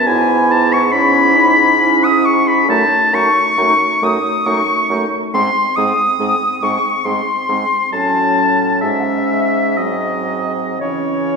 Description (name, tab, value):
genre	classical, slow romantic movement for wind quintet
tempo	55-71 BPM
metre	3/4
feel	rubato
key	unclear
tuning	A4 = 442 Hz
part	mellow wooden flute	melody	0.0-11.4 s	C#5 to F#6	-21 LUFS	left 5 dB	none
part	warm oboe	second line	0.0-11.4 s	C#5 to D#6	-15 LUFS	left 2 dB	none
part	mellow French horn	accompaniment	0.0-11.4 s	E3 to E4	-22 LUFS	right 1 dB	none
part	warm bassoon	bass	0.0-11.4 s	F#2 to C#3	-22 LUFS	right 2 dB	none
part	clear clarinet	accompaniment	0.1-11.4 s	B#3 to E4	-20 LUFS	right 4 dB	none
room	wet concert hall reverb, RT60 1.8 s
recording	recorded in a church or concert hall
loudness	-12 LUFS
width	side -5 dB against mid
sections	0.0-11.4 A section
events	none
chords	0.1 E/G#; 2.7 D#dim/F#; 5.3 G#; 7.9 F#m/A; 8.8 C#m/G#; 9.8 G#7; 10.8 C#m